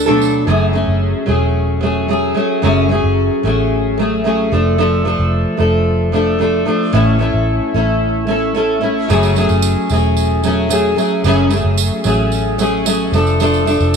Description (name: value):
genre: acoustic pop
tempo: 112 BPM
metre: 4/4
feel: straight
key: unclear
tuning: A4 = 440 Hz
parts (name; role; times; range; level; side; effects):
- fingerpicked steel-string acoustic guitar; accompaniment; 0.0-14.0 s; F#2 to A4; -14 LUFS; equal; double-tracked left and right
- vintage muted fingered electric bass; bass; 0.0-14.0 s; E1 to D2; -18 LUFS; equal; none
- tambourine; percussion; 0.2-0.3, 9.1-14.0 s; none; -26 LUFS; right 14 dB; none
room: light reverb, studio ambience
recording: none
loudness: -12 LUFS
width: side -6 dB against mid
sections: 0.5-14.0 A section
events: none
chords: 0.5 F#madd9; 4.5 Dm/F; 6.9 A; 9.1 F#madd9; 13.1 Dm/F